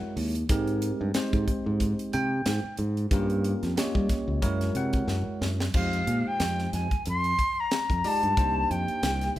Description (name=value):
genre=electric jazz fusion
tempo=92 BPM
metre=4/4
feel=swing 56% on 16ths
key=unclear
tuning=A4 = 444 Hz
part: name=bell-like tine electric piano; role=accompaniment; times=0.0-9.4 s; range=Ab3 to G5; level=-32 LUFS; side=right 1 dB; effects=slow stereo tremolo
part: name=modern bright fingered electric bass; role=bass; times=0.0-9.4 s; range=C2 to G3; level=-28 LUFS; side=equal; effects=none
part: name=tight funk drum kit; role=drums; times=0.2-9.4 s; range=crash cymbal, hi-hat, kick drum, snare drum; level=-29 LUFS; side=equal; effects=none
part: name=silver concert flute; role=melody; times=5.7-9.4 s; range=F5 to C6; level=-27 LUFS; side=left 2 dB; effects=none
room=moderate large studio reverb, RT60 1.2 s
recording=band playing live in one room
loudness=-24 LUFS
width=side -14 dB against mid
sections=0.0-5.7 A section; 5.7-9.4 B section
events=drum fill 5.1-5.7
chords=0.0 Gb9; 0.5 Abmaj7; 3.1 Gm7b5; 4.4 Gb9; 5.7 Fm9; 8.4 Cm7